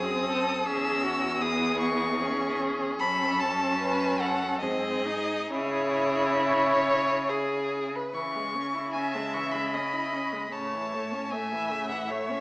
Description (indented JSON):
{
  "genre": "classical, slow romantic movement for string quartet",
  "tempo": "66-79 BPM",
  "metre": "3/4",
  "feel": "rubato",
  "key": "C# minor",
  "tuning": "A4 = 442 Hz",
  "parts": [
    { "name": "clear violin", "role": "melody", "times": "0.0-12.4 s", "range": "C#5 to E6", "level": "-30 LUFS", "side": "left 1 dB", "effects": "none" },
    { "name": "warm violin", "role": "second line", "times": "0.0-12.4 s", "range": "F#4 to E5", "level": "-30 LUFS", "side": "equal", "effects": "none" },
    { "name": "rich viola", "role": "accompaniment", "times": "0.0-12.4 s", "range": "C#3 to E4", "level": "-30 LUFS", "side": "equal", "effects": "none" },
    { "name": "rich cello", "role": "bass", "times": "0.0-12.4 s", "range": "E2 to C#3", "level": "-34 LUFS", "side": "equal", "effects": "none" }
  ],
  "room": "wet recital hall reverb, RT60 1.3 s",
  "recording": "small speaker sound",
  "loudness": "-25 LUFS",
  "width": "side -24 dB against mid",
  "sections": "0.0-8.2 A section; 8.2-12.4 A section",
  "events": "none",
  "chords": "0.0 G#7/F#; 0.7 C#m/E; 3.0 F#m; 4.6 G#; 5.5 C#m; 10.5 A"
}